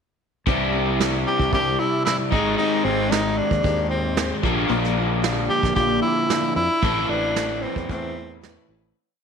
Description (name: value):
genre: folk rock and heartland rock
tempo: 113 BPM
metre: 4/4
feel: straight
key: unclear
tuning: A4 = 442 Hz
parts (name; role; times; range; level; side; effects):
- picked steel-string acoustic guitar; accompaniment; 0.5-9.0 s; A2 to B4; -30 LUFS; left 11 dB; none
- crunchy overdriven guitar; riff; 0.5-9.0 s; Ab2 to Bb4; -24 LUFS; equal; spring reverb
- fingered electric bass; bass; 0.5-8.9 s; Ab1 to F2; -28 LUFS; equal; none
- soft brush drum kit; drums; 0.5-8.6 s; hi-hat, kick drum, snare drum; -26 LUFS; right 4 dB; none
- breathy tenor saxophone; melody; 1.3-8.4 s; C4 to G4; -23 LUFS; equal; none
room: moderate echo chamber reverb, RT60 1.5 s, studio reverb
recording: 1960s-style stereo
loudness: -19 LUFS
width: side -6 dB against mid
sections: 0.5-9.0 verse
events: fade-out 6.8-9.0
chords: 0.5 Cadd9; 2.3 Abmaj7; 4.4 Bb6; 6.8 Amadd9